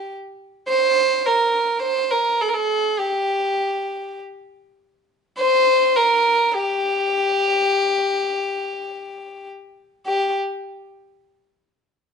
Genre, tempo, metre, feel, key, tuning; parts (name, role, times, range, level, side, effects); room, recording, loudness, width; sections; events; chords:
arabic; free time; A4 = 440 Hz
warm violin; solo; 0.0-10.3 s; G4 to C5; -18 LUFS; equal
moderate stone room reverb, RT60 1.1 s; band playing live in one room, nothing above 10.9 kHz; -18 LUFS; side -6 dB against mid
0.7-10.1 A section; 10.1-12.1 B section